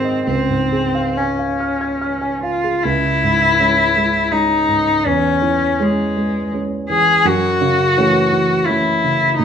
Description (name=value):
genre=classical, romantic duo for cello and grand piano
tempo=66-86 BPM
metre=3/4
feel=rubato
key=C# minor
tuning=A4 = 440 Hz
part: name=rich cello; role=melody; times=0.0-9.4 s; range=G#3 to G#4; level=-15 LUFS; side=left 2 dB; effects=none
part: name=dark concert grand piano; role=accompaniment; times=0.0-9.4 s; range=Db2 to Ab6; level=-19 LUFS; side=right 3 dB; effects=none
room=wet stone room reverb, RT60 0.9 s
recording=none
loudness=-14 LUFS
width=side -8 dB against mid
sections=0.0-2.8 A section; 2.8-9.4 B section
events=none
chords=0.3 Db; 2.8 C#m; 5.1 C#m/E; 7.3 F#m7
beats=| 0.28 1.18 2.02 | 2.84 3.60 4.33 | 5.06 5.81 6.54 | 7.26 7.97 8.67 | 9.38